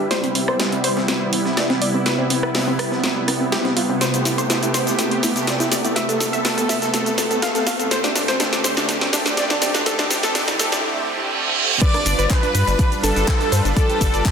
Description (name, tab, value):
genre	progressive house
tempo	123 BPM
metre	4/4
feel	straight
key	unclear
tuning	A4 = 441 Hz
part	supersaw pad	sustained chords	0.0-14.3 s	C3 to B4	-23 LUFS	right 1 dB	sidechain pumping, low-pass filter
part	wide unison pluck	arpeggios	0.0-14.3 s	C4 to F5	-23 LUFS	equal	sidechain pumping, dub echo
part	round analog bass	bass	0.0-14.2 s	G1 to G2	-26 LUFS	equal	none
part	riser and reverse cymbal	sound effects	0.0-11.8 s	none	-28 LUFS	right 3 dB	none
part	breakbeat sampler-style drum kit	drums	0.1-14.3 s	hi-hat, snare drum	-31 LUFS	equal	none
part	house drum kit	drums	0.1-14.3 s	cabasa, crash cymbal, handclaps, hi-hat, rim click, snare drum	-22 LUFS	equal	high-pass filter on hats, high-pass filter on perc, soft clipping on snare, high-pass filter on snare, high-pass filter on cymbals, high-pass filter on room
part	wide unison lead	melody	11.8-14.3 s	A4 to D5	-22 LUFS	equal	analog chorus, sidechain pumping, dub echo
part	bright symphonic violin section	second line	11.8-14.3 s	A4 to D5	-28 LUFS	equal	sidechain pumping
part	electronic kick drum	drums	11.8-14.3 s	none	-18 LUFS	equal	none
room	wet lush hall reverb, RT60 1.6 s, digital ambience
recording	dense, heavily limited modern master, high-pass filter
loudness	-17 LUFS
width	side -6 dB against mid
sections	0.0-11.8 A section; 11.8-14.3 B section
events	build-up 0.0-11.8; drum fill 0.0-10.8; filter sweep on synth pluck 0.0-11.8; filter sweep on supersaw synth 0.0-11.8; filter sweep 0.0-11.8; reverse cymbal 10.8-11.8; drop 11.8-14.3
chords	0.1 Cmaj7; 4.0 Am7; 7.9 D7sus4; 11.8 G7